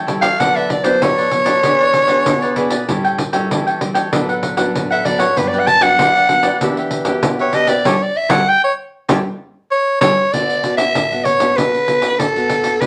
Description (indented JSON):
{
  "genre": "samba and choro",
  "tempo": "97 BPM",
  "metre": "4/4",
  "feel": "straight",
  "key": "D major",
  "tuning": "A4 = 438 Hz",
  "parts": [
    { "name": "cavaquinho", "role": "accompaniment", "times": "0.0-10.1 s", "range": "D4 to G5", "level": "-23 LUFS", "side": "equal", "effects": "none" },
    { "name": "nylon-string guitar", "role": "accompaniment", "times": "0.0-12.9 s", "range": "G2 to G#4", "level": "-25 LUFS", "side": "equal", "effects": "none" },
    { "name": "pandeiro", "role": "percussion", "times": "0.1-12.9 s", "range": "none", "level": "-23 LUFS", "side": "equal", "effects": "none" },
    { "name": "growling soprano saxophone", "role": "melody", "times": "0.2-12.9 s", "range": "A4 to A5", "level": "-16 LUFS", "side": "equal", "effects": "none" }
  ],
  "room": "wet studio reverb, RT60 0.6 s",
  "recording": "none",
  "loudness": "-15 LUFS",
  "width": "mono",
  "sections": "0.0-10.3 A section; 10.3-12.9 B section",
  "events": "soprano saxophone solo 0.0-10.3; band accent 7.9-10.3",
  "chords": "0.4 D69; 1.6 E7; 2.9 A7; 4.1 D6/A; 5.4 Gmaj7; 6.6 Em7; 7.9 A7; 10.3 D6",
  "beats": "| 0.40 1.02 1.64 2.27 | 2.89 3.51 4.13 4.75 | 5.37 5.99 6.61 7.23 | 7.85 8.47 9.10 9.71 | 10.34 10.96 11.58 12.20 | 12.82"
}